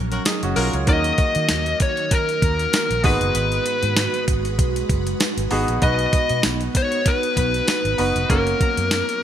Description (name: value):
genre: 1980s-style pop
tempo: 97 BPM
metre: 4/4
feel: swing 55% on 16ths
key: unclear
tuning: A4 = 440 Hz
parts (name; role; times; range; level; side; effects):
- bright concert grand piano; accompaniment; 0.0-9.2 s; Ab2 to Db5; -26 LUFS; right 2 dB; none
- ethereal airy pad; sustained chords; 0.0-9.2 s; Eb3 to Cb5; -28 LUFS; right 2 dB; ensemble chorus, built-in reverb, phaser
- vintage muted fingered electric bass; bass; 0.0-9.0 s; F1 to Eb3; -24 LUFS; right 1 dB; none
- warm horn section; stabs; 0.1-0.8 s; Db4 to Bb4; -28 LUFS; left 3 dB; digital delay
- clean 12-bit digital drum machine; drums; 0.1-9.2 s; hi-hat, kick drum, snare drum, tambourine; -22 LUFS; equal; none
- fuzz lead guitar; melody; 0.9-9.2 s; Bb4 to Eb5; -22 LUFS; left 2 dB; distortion
room: moderate lush hall reverb, RT60 1.6 s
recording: bright 1980s-style digital production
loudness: -17 LUFS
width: side -10 dB against mid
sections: 0.0-9.2 A section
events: band accent 0.0-0.9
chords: 0.0 Gb; 0.9 Ebm; 3.0 Abm7; 5.8 B; 8.3 Gb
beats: 0.26 | 0.87 1.49 2.11 2.73 | 3.35 3.97 4.59 5.20 | 5.82 6.44 7.06 7.68 | 8.30 8.92